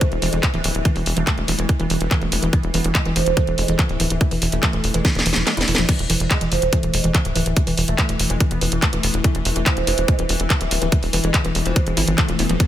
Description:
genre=psychedelic trance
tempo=143 BPM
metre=4/4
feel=straight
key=E major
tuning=A4 = 436 Hz
part: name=oud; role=melody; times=0.0-12.7 s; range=E3 to E4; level=-27 LUFS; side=right 2 dB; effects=phaser, sidechain pumping, digital delay
part: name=evolving wavetable pad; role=sustained chords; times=0.0-12.7 s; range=E3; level=-28 LUFS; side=left 2 dB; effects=phaser, built-in reverb, sidechain pumping
part: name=woody wave-folded pluck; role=riff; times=0.0-12.5 s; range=E3 to F4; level=-26 LUFS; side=moving between left 3 dB and right 3 dB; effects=chorus, auto-pan, sidechain pumping, tape echo
part: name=electronic kick drum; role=drums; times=0.0-12.7 s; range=none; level=-18 LUFS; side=equal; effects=none
part: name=garage drum kit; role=drums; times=0.0-12.7 s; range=crash cymbal, handclaps, hi-hat, snare drum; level=-23 LUFS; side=equal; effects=none
part: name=tight sequencer bass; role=bass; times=0.1-12.6 s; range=D1 to G#1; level=-22 LUFS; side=equal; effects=none
room=digital ambience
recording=none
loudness=-17 LUFS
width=side -12 dB against mid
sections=0.0-5.9 A section; 5.9-12.7 B section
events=drum fill 5.0-5.9; kick drops out 5.5-5.9; drop 5.9-12.7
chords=none

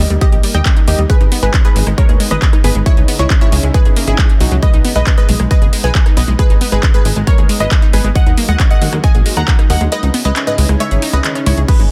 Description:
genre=uplifting trance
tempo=136 BPM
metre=4/4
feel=straight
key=G# minor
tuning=A4 = 440 Hz
part: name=unison pluck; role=melody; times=0.0-11.9 s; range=D#4 to A#5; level=-23 LUFS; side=equal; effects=subtle chorus, sidechain pumping, delay
part: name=lush unison pad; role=sustained chords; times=0.0-11.9 s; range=C#3 to G#4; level=-27 LUFS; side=equal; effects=chorus, sidechain pumping
part: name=unison pluck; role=arpeggios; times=0.0-11.9 s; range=G#2 to G#4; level=-25 LUFS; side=equal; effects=sidechain pumping, delay
part: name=plucky analog bass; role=bass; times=0.0-11.9 s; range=F#1 to D#2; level=-17 LUFS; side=equal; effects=sidechain pumping
part: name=downlifter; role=sound effects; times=0.0-1.1 s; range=none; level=barely audible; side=none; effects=none
part: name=big-room dance drum kit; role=drums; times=0.1-11.9 s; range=crash cymbal, handclaps, hi-hat, rim click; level=-23 LUFS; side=equal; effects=overdrive
part: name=electronic kick drum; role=drums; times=0.2-11.8 s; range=none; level=-13 LUFS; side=equal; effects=overdrive
room=digital ambience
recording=dense, heavily limited modern master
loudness=-12 LUFS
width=mono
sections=0.0-11.9 A section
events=kick drops out 9.9-11.7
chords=0.0 D#; 1.1 G#m; 2.9 C#madd9; 4.6 B6; 6.4 G#m; 8.2 D#m; 9.9 C#madd9

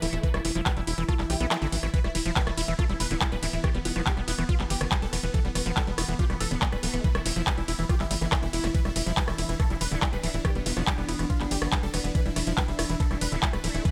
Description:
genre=psychedelic trance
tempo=141 BPM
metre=4/4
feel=straight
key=E phrygian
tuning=A4 = 440 Hz
part: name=dense compressed supersaw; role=melody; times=0.0-13.9 s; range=B3 to B4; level=-37 LUFS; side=equal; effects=phaser, sidechain pumping, dub echo
part: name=vowel-sweep wobble bass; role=second line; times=0.0-13.9 s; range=A3 to E4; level=-44 LUFS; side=equal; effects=chorus, sidechain pumping, high-pass filter, dub echo
part: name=evolving wavetable pad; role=sustained chords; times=0.0-13.9 s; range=E3 to E4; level=-40 LUFS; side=equal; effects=none
part: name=overdriven acid bass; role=riff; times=0.0-13.9 s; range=D3 to F4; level=-36 LUFS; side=equal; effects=distortion, cassette tape, sidechain pumping, dub echo
part: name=tight sequencer bass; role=bass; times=0.0-13.8 s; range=D1 to B1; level=-34 LUFS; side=equal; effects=none
part: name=techno drum kit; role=drums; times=0.0-13.9 s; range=handclaps, hi-hat, ride cymbal, rim click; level=-33 LUFS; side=equal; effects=none
part: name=electronic kick drum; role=drums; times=0.2-13.9 s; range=none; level=-28 LUFS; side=equal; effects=none
part: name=swell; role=sound effects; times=1.3-1.9 s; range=none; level=-41 LUFS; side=equal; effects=none
room=light reverb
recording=none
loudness=-27 LUFS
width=mono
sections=0.0-13.9 A section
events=kick drops out 1.5-1.9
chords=0.0 E5

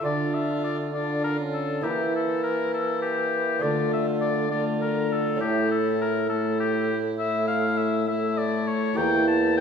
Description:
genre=classical, renaissance-style consort dance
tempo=67 BPM (dotted quarters)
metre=6/8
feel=straight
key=D harmonic minor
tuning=A4 = 440 Hz
part: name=warm oboe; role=melody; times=0.0-9.6 s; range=G4 to A5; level=-28 LUFS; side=left 4 dB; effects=none
part: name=clear trombone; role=accompaniment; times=0.0-9.6 s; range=A3 to D4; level=-28 LUFS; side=left 2 dB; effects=none
part: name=lute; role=accompaniment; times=0.0-9.6 s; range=E2 to D5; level=-29 LUFS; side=right 4 dB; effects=none
part: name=mellow bassoon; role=bass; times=0.0-9.6 s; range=E2 to E3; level=-28 LUFS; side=right 1 dB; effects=none
part: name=warm violin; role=second line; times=0.1-9.6 s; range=E4 to F4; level=-36 LUFS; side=right 4 dB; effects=none
room=wet recital hall reverb, RT60 1.5 s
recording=heard from further back in the room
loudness=-22 LUFS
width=side -6 dB against mid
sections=0.1-9.6 A section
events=none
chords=0.1 Dm; 1.8 Edim; 3.6 Dm; 5.4 A; 9.0 Edim

